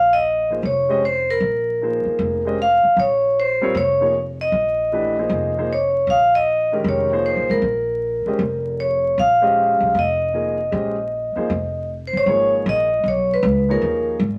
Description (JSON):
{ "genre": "jazz", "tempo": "155 BPM", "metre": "4/4", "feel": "swing 64% on 8ths", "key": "Bb dorian", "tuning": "A4 = 440 Hz", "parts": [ { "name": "vibraphone with medium hard mallets", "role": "melody", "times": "0.0-14.1 s", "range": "Bb4 to F5", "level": "-20 LUFS", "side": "equal", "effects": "none" }, { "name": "upright bass", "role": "bass", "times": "0.0-14.4 s", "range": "F1 to D#2", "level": "-28 LUFS", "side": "equal", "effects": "none" }, { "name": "warm concert grand piano", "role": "accompaniment", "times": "0.5-14.2 s", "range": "Eb3 to Eb5", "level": "-28 LUFS", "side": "equal", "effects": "none" } ], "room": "moderate studio reverb, RT60 0.7 s", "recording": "vinyl crackle", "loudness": "-19 LUFS", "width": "mono", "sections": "0.0-12.3 A section; 12.3-14.4 B section", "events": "none", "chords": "0.0 Bbm11; 12.3 G#madd9" }